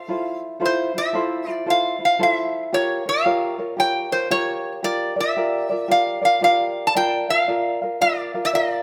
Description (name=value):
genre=Hawaiian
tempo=114 BPM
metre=4/4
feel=swing 63% on 8ths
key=F major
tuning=A4 = 440 Hz
part: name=metal-body resonator slide guitar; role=melody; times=0.0-8.8 s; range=C5 to A5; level=-22 LUFS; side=equal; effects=none
part: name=tenor ukulele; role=accompaniment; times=0.0-8.8 s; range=E4 to F5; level=-26 LUFS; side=equal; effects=none
room=moderate recital hall reverb, RT60 1.5 s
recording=close, detailed microphones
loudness=-21 LUFS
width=mono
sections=0.6-8.8 A section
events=none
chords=0.0 Fmaj7; 2.7 Bbm6; 4.8 Gm7; 7.0 Bb